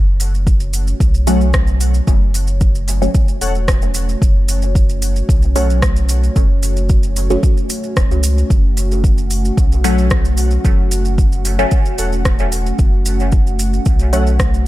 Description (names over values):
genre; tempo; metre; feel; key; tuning
dub techno; 112 BPM; 4/4; straight; F# minor; A4 = 440 Hz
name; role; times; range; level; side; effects
dark analog pad; sustained chords; 0.0-14.7 s; A3 to F#5; -25 LUFS; equal; chorus, sidechain pumping
pure sine sub bass; bass; 0.0-14.7 s; E1 to C#2; -16 LUFS; equal; sidechain pumping
deep house drum kit; drums; 0.2-14.5 s; hi-hat, rim click; -24 LUFS; left 1 dB; studio reverb
maracas; percussion; 0.2-14.6 s; none; -28 LUFS; right 5 dB; none
electronic kick drum; drums; 0.5-14.5 s; none; -14 LUFS; equal; studio reverb
warbly lo-fi synth keys; riff; 1.3-5.7, 9.8-14.2 s; A4 to F#5; -29 LUFS; left 2 dB; chorus, sidechain pumping, dub echo
filtered dub chord stab; stabs; 1.3-14.7 s; F#3 to C#4; -21 LUFS; left 1 dB; phaser, sidechain pumping, dub echo
room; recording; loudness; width
digital ambience; none; -12 LUFS; side -16 dB against mid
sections
0.0-14.7 A section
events
none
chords
0.0 F#m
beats
0.47 1.00 1.54 | 2.07 2.61 3.15 3.68 | 4.22 4.75 5.29 5.82 | 6.36 6.90 7.43 7.97 | 8.50 9.04 9.57 10.11 | 10.65 11.18 11.72 12.25 | 12.79 13.32 13.86 14.40